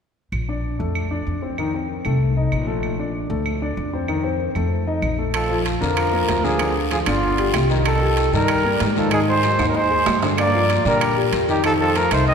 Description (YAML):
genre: Afro-Cuban jazz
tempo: 191 BPM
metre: 4/4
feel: straight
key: Bb major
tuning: A4 = 440 Hz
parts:
  - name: upright bass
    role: bass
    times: 0.3-12.3 s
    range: G1 to Bb2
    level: -23 LUFS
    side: equal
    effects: none
  - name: claves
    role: percussion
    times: 0.3-12.3 s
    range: none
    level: -33 LUFS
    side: right 4 dB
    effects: none
  - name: warm grand piano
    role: accompaniment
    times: 0.5-12.3 s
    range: D3 to Eb5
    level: -24 LUFS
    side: left 3 dB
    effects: none
  - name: breathy trumpet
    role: melody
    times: 5.3-12.3 s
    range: F4 to Eb5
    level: -20 LUFS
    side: equal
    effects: none
  - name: bright trombone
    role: second line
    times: 5.3-12.3 s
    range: D3 to C4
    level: -27 LUFS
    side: right 4 dB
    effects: none
  - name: guiro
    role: percussion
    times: 5.3-12.3 s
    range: none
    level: -33 LUFS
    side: left 6 dB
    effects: none
  - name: timbales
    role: percussion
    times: 5.3-12.3 s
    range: none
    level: -27 LUFS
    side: right 6 dB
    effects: none
room: wet church reverb, RT60 2.7 s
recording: recorded in a church or concert hall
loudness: -18 LUFS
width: side -6 dB against mid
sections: 0.3-5.3 A section; 5.3-12.3 B section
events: drum fill 9.6-10.4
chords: 0.3 Bbmaj7; 1.6 F7; 2.8 Bbmaj7; 4.1 F7; 5.3 Bbmaj7; 6.6 Fm69; 7.2 G5; 7.9 Cm7; 9.1 Ab7#11; 10.4 Gm7; 11.6 F7